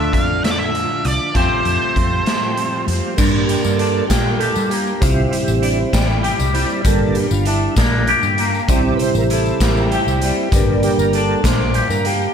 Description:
psychedelic rock; 65 BPM (dotted quarters); 6/8; straight; G dorian; A4 = 442 Hz
octave-fuzz lead guitar; melody; 0.0-2.8 s; C5 to F5; -22 LUFS; right 2 dB; wah, distortion, tape echo
tonewheel organ; sustained chords; 0.0-12.3 s; F3 to D5; -22 LUFS; right 5 dB; slow rotary speaker, chorus vibrato
twangy electric guitar; riff; 0.0-12.3 s; G2 to G4; -20 LUFS; left 2 dB; phaser, double-tracked left and right
picked electric bass; bass; 0.0-12.3 s; G1 to G3; -20 LUFS; equal
raw garage drum kit; drums; 0.1-12.2 s; crash cymbal, hi-hat, kick drum, snare drum; -20 LUFS; equal
tambourine; percussion; 3.2-12.3 s; -32 LUFS; left 14 dB
light reverb, small room reverb; -14 LUFS; side -7 dB against mid
0.0-3.2 A section; 3.2-12.3 B section
tonewheel organ solo 3.2-12.3
0.0 Dm; 1.4 Fadd9; 3.2 Gm; 5.0 C; 6.9 Gm; 8.7 C; 10.5 Gm
0.44 | 1.35 2.27 | 3.19 4.10 | 5.02 5.93 | 6.85 7.77 | 8.69 9.61 | 10.52 11.44

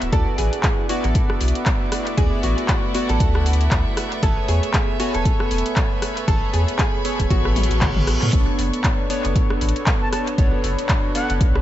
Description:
deep house; 117 BPM; 4/4; swing 57% on 16ths; A4 = 440 Hz
warm analog pad; sustained chords; 0.0-11.6 s; D4 to D6; -34 LUFS; right 1 dB; chorus, vintage 12-bit sampler grit, sidechain pumping
chorused polysynth; stabs; 0.0-11.6 s; A3 to G#5; -26 LUFS; equal; sidechain pumping, dub echo
warm sub bass; bass; 0.0-11.6 s; D1 to A2; -21 LUFS; equal; sidechain pumping
house drum kit; drums; 0.0-11.6 s; handclaps, hi-hat, rim click, toms; -26 LUFS; left 1 dB; small room ambience, tape echo
rich chamber string section; texture; 0.0-11.6 s; A3 to C#6; -32 LUFS; equal; sidechain pumping
vintage hollow-body jazz guitar; melody; 0.1-8.0 s; F#4 to A4; -28 LUFS; equal; tape echo
electronic kick drum; drums; 0.1-11.5 s; -21 LUFS; equal; small room ambience
reverse cymbal; sound effects; 7.5-8.3 s; -30 LUFS; right 2 dB
bright reedy concert flute; melody; 10.0-11.3 s; F#5 to A5; -29 LUFS; equal; vintage 12-bit sampler grit, dub echo
little or no reverb; echo-heavy mix, vinyl crackle, nothing above 7.9 kHz; -17 LUFS; side -13 dB against mid
0.0-11.6 A section
reverse cymbal 7.5-8.3; drum fill 7.6-8.3
0.0 D69; 4.2 Amaj9; 8.3 Bm9
| 0.12 0.64 1.15 1.66 | 2.18 2.69 3.20 3.71 | 4.23 4.74 5.25 5.77 | 6.28 6.79 7.30 7.82 | 8.33 8.84 9.36 9.87 | 10.38 10.89 11.41

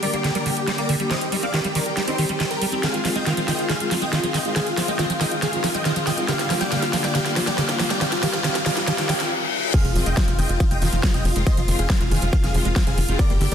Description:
uplifting trance; 139 BPM; 4/4; straight; F dorian; A4 = 440 Hz
big supersaw lead; melody; 0.0-13.5 s; Eb4 to G5; -25 LUFS; equal; sidechain pumping, tape echo
rich studio string section; sustained chords; 0.0-13.5 s; D3 to G4; -28 LUFS; left 2 dB; sidechain pumping
liquid acid bass; arpeggios; 0.0-13.5 s; D3 to C4; -26 LUFS; right 2 dB; analog chorus, sidechain pumping, tape echo
big-room dance drum kit; drums; 0.0-13.5 s; crash cymbal, hi-hat, snare drum; -26 LUFS; equal; overdrive, sidechain pumping on hats, high-pass filter on hats, high-pass filter on snare, sidechain pumping on cymbals, high-pass filter on cymbals
riser, reverse cymbal and impact; sound effects; 5.6-11.5 s; -30 LUFS; left 3 dB
electronic kick drum; drums; 9.7-13.3 s; -20 LUFS; equal; overdrive
tight sequencer bass; bass; 9.8-13.5 s; F1 to G1; -22 LUFS; equal; tube saturation, sidechain pumping
moderate digital room reverb, RT60 1.1 s, digital ambience; dense, heavily limited modern master; -19 LUFS; side -8 dB against mid
0.0-9.7 A section; 9.7-13.5 B section
build-up 0.0-9.7; drum fill 0.0-9.3; filter sweep on acid bass 0.0-9.7; riser 5.6-9.7; reverse cymbal 8.9-9.7; drop 9.7-13.5; impact 9.7-11.5
0.0 Gm; 1.1 Cm; 2.8 Fm7; 6.3 Gm; 8.0 Cm; 9.7 Fm7
0.24 0.68 | 1.11 1.54 1.97 2.40 | 2.83 3.26 3.70 4.13 | 4.56 4.99 5.42 5.85 | 6.29 6.72 7.15 7.58 | 8.01 8.44 8.88 9.31 | 9.74 10.17 10.60 11.03 | 11.47 11.90 12.33 12.76 | 13.19

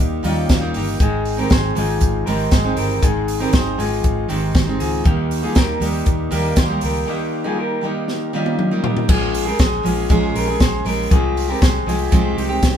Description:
jangly indie pop; 119 BPM; 4/4; straight; Ab major; A4 = 444 Hz
picked steel-string acoustic guitar; accompaniment; 0.0-12.8 s; Ab2 to Ab4; -22 LUFS; right 4 dB
electric guitar through a small old amp; arpeggios; 0.0-12.8 s; Db4 to C5; -22 LUFS; left 3 dB
vintage muted fingered electric bass; bass; 0.0-12.8 s; G1 to Eb2; -25 LUFS; equal
compact cocktail drum kit; drums; 0.2-12.7 s; crash cymbal, hi-hat, kick drum, snare drum, toms; -18 LUFS; equal
moderate studio reverb, RT60 0.7 s; band playing live in one room; -16 LUFS; side -9 dB against mid
0.0-9.1 A section; 9.1-12.8 B section
break 7.1-9.1; drum fill 8.1-9.1
0.0 Ab; 5.0 Eb; 9.1 Bbm7; 11.1 Fmadd9/C
0.00 0.50 | 1.01 1.51 2.02 2.52 | 3.03 3.53 4.04 4.54 | 5.05 5.55 6.06 6.56 | 7.07 7.58 8.08 8.59 | 9.09 9.60 10.10 10.61 | 11.11 11.62 12.12 12.63

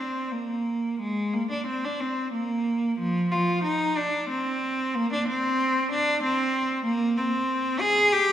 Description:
classical, baroque-style suite movement for unaccompanied cello; 62 BPM (dotted quarters); 6/8; uneven beats, rubato; A4 = 441 Hz
rich cello; solo; 0.0-8.3 s; F3 to Ab4; -23 LUFS; equal
wet scoring stage reverb, RT60 1.8 s; recorded in a church or concert hall; -23 LUFS; side -10 dB against mid
0.0-8.3 A section
0.33 | 1.33 2.33 | 3.32 4.30 | 5.28 6.23 | 7.16 8.12

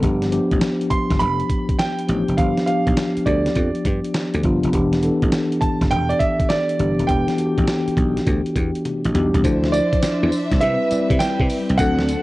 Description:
R&B, new jack swing; 102 BPM; 4/4; swing 66% on 16ths; A4 = 439 Hz
mellow tine electric piano; accompaniment; 0.0-12.2 s; E3 to D5; -21 LUFS; left 1 dB; medium stereo tremolo, cassette tape
dry thumbed slap bass; bass; 0.0-12.1 s; E1 to C3; -22 LUFS; equal
dusty soul sampler-style drum kit; drums; 0.0-12.2 s; hi-hat, kick drum, snare drum, tambourine, toms; -22 LUFS; equal; cassette tape
clear grand piano; melody; 0.9-12.2 s; D5 to C6; -23 LUFS; right 3 dB; cassette tape
warm studio string section; sustained chords; 9.4-12.2 s; F3 to E5; -27 LUFS; right 1 dB; cassette tape
light reverb; home recording on cassette; -17 LUFS; side -18 dB against mid
0.0-9.4 A section; 9.4-12.2 B section
drum fill 8.9-9.4
0.0 G7; 4.7 Em7; 9.4 Dm9; 10.6 Cmaj7
| 0.03 0.62 1.21 1.79 | 2.38 2.97 3.56 4.15 | 4.74 5.32 5.91 6.50 | 7.09 7.68 8.26 8.85 | 9.44 10.03 10.62 11.21 | 11.79

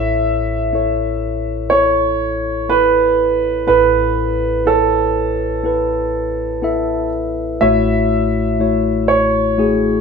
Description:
pop; 61 BPM; 4/4; straight; A major; A4 = 440 Hz
clear concert grand piano; melody; 0.0-10.0 s; A4 to E5; -16 LUFS; right 4 dB
mellow tine electric piano; accompaniment; 0.0-10.0 s; A1 to E5; -17 LUFS; left 2 dB
wet stone room reverb, RT60 1.1 s; band playing live in one room; -14 LUFS; side -5 dB against mid
0.0-10.0 A section
0.0 Aadd9; 7.6 F#m7/A
0.73 1.72 2.70 | 3.68 4.67 5.65 6.63 | 7.62 8.60 9.59

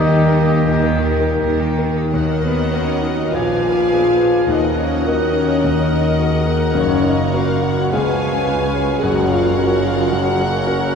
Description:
classical, romantic movement for piano and orchestra; 104 BPM; 4/4; uneven beats, rubato; Eb minor; A4 = 444 Hz
clear concert grand piano; melody; 0.0-10.9 s; Gb1 to Eb6; -20 LUFS; left 1 dB
rich studio violin section; melody; 0.0-10.9 s; G4 to Ab5; -31 LUFS; left 2 dB
mellow clarinet; second line; 0.0-10.9 s; Bb3 to Cb5; -29 LUFS; equal
mellow concert flute; second line; 0.0-10.9 s; Bb4 to Ab5; -28 LUFS; left 2 dB
warm oboe; second line; 0.0-10.9 s; G4 to Ab5; -30 LUFS; right 1 dB
warm studio violin section; second line; 0.0-10.9 s; Bb4 to Ab5; -30 LUFS; left 2 dB
mellow bassoon; accompaniment; 0.0-10.9 s; Db3 to Bb3; -28 LUFS; equal
rich studio viola section; accompaniment; 0.0-10.9 s; G4 to Eb5; -28 LUFS; right 1 dB
mellow French horn section; sustained chords; 0.0-10.8 s; G3 to Ab4; -20 LUFS; left 2 dB
warm trumpet; stabs; 0.0-1.4 s; Eb5; -31 LUFS; left 1 dB
clear studio cello section; bass; 0.0-10.9 s; Db2 to Eb3; -26 LUFS; right 2 dB
clear studio double bass section; bass; 0.0-10.9 s; Gb1 to Eb2; -23 LUFS; right 2 dB
wet church reverb, RT60 3.2 s; heard from further back in the room; -14 LUFS; side -6 dB against mid
0.0-2.1 A section; 2.1-10.9 B section
0.0 Eb; 2.1 Ebm; 3.3 Bb7b9; 4.5 Ebm; 6.8 Gb; 7.9 Db7; 9.0 Gb
0.66 1.40 | 2.13 2.73 3.33 3.92 | 4.50 5.07 5.64 6.19 | 6.76 7.34 7.93 8.48 | 9.03 9.58 10.12 10.68

